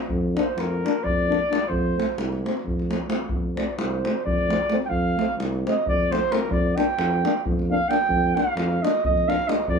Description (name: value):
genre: balkan folk, Balkan brass band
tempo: 263 BPM (eighths)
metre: 7/8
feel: straight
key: unclear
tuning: A4 = 440 Hz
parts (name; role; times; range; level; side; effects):
- davul; percussion; 0.0-9.8 s; none; -28 LUFS; left 1 dB; none
- mellow tuba; bass; 0.1-9.8 s; C2 to F2; -26 LUFS; equal; none
- mellow flugelhorn; second line; 0.4-9.8 s; Bb4 to G5; -24 LUFS; right 2 dB; none
- dark euphonium; accompaniment; 0.4-9.6 s; A3 to Bb3; -30 LUFS; right 4 dB; none
- dark trombone; accompaniment; 0.4-9.5 s; C4 to D4; -27 LUFS; left 8 dB; none
room: moderate studio reverb, RT60 0.5 s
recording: band playing live in one room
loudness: -21 LUFS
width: side -5 dB against mid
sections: 0.0-9.8 A section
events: flugelhorn solo 0.0-9.8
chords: 0.1 Bb/F; 1.7 F; 6.5 Bb/F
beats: | 0.11 0.34 0.56 0.80 1.02 1.25 1.48 | 1.71 1.94 2.17 2.40 2.62 2.85 3.08 | 3.31 3.54 3.77 4.00 4.22 4.45 4.68 | 4.91 5.13 5.36 5.59 5.82 6.05 6.27 | 6.50 6.73 6.96 7.18 7.41 7.64 7.86 | 8.09 8.32 8.54 8.77 9.00 9.22 9.45 | 9.68